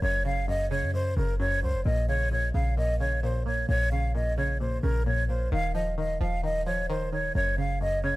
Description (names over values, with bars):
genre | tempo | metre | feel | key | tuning
hip hop, trap | 131 BPM | 4/4 | half-time | Bb minor | A4 = 441 Hz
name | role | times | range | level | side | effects
breathy concert flute | melody | 0.0-8.2 s | Bb4 to F5 | -29 LUFS | right 1 dB | analog delay
string-like resonator pluck | accompaniment | 0.0-8.2 s | Gb2 to F3 | -33 LUFS | equal | chorus, phaser
clean 808-style bass | bass | 0.0-8.2 s | Eb1 to Gb2 | -28 LUFS | equal | none
room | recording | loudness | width
small room ambience | dry, gritty hardware recording | -25 LUFS | side -18 dB against mid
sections
0.0-8.2 A section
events
none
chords
0.0 Gb5; 1.9 Bbm; 5.5 Ebsus2; 7.4 Gb5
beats
| 0.02 0.48 0.94 1.40 | 1.85 2.31 2.77 3.23 | 3.69 4.14 4.60 5.06 | 5.52 5.98 6.44 6.89 | 7.35 7.81